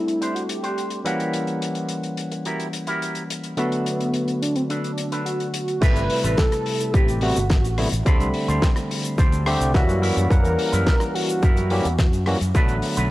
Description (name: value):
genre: nu-disco, nu disco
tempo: 107 BPM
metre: 4/4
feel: straight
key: A dorian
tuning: A4 = 439 Hz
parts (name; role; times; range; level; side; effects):
- wide unison lead; melody; 0.0-12.3 s; B3 to B4; -26 LUFS; equal; analog delay
- barky tine electric piano; accompaniment; 0.0-13.1 s; C3 to B5; -25 LUFS; equal; sidechain pumping
- electric guitar with an envelope filter; riff; 0.1-13.1 s; C4 to F#5; -30 LUFS; right 2 dB; wide subtle chorus
- damped 70s drum kit; drums; 0.1-13.1 s; crash cymbal, hi-hat, rim click, shaker, snare drum; -29 LUFS; left 2 dB; small room reverb
- fingered electric bass; bass; 5.8-13.1 s; G1 to F#2; -23 LUFS; equal; none
- electronic kick drum; drums; 5.8-12.7 s; none; -18 LUFS; equal; small room reverb
room: light reverb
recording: dry, gritty hardware recording, transformer saturation, cassette tape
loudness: -19 LUFS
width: side -17 dB against mid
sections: 0.0-5.8 A section; 5.8-13.1 B section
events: drop 5.8-13.1; clean electric guitar fill 9.2-10.3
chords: 0.0 D7sus4; 1.1 F#7b9; 3.6 Bm7; 5.8 Am9; 8.1 D7sus4; 10.0 F#7b9; 12.5 Bm7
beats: 0.21 0.77 | 1.33 1.89 2.46 3.02 | 3.58 4.14 4.70 5.26 | 5.82 6.38 6.94 7.50 | 8.06 8.62 9.18 9.74 | 10.30 10.87 11.43 11.99 | 12.55